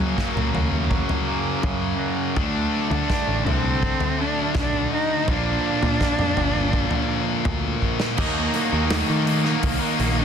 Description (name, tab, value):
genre	quiet-loud alternative rock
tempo	82 BPM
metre	4/4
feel	straight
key	unclear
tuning	A4 = 440 Hz
part	warm cello	melody	0.0-10.2 s	A3 to Eb4	-26 LUFS	right 1 dB	slapback echo
part	twangy electric guitar	arpeggios	0.0-2.4 s	F#2 to A#3	-31 LUFS	right 6 dB	wide subtle chorus
part	high-gain distorted guitar	riff	0.0-10.2 s	F#2 to Eb4	-26 LUFS	left 12 dB	distortion
part	thick fuzz guitar	riff	0.0-10.2 s	F#2 to Gb4	-28 LUFS	right 13 dB	distortion
part	picked electric bass	bass	0.0-10.2 s	G1 to F#3	-26 LUFS	equal	none
part	loose indie drum kit	drums	0.0-10.2 s	crash cymbal, hi-hat, kick drum, snare drum, toms	-26 LUFS	equal	soft clipping on snare
part	crunchy overdriven guitar	riff	8.2-10.2 s	Eb3 to Eb4	-29 LUFS	equal	none
room	light reverb, small room ambience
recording	dense, heavily limited modern master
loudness	-20 LUFS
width	side -7 dB against mid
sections	0.0-8.2 A section; 8.2-10.2 B section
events	drum fill 7.8-8.2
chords	0.0 F#; 2.4 D; 5.3 Bb; 8.2 Ebm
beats	0.17 0.90 1.63 | 2.36 3.09 3.82 4.55 | 5.28 6.00 6.73 7.46 | 8.18 8.91 9.63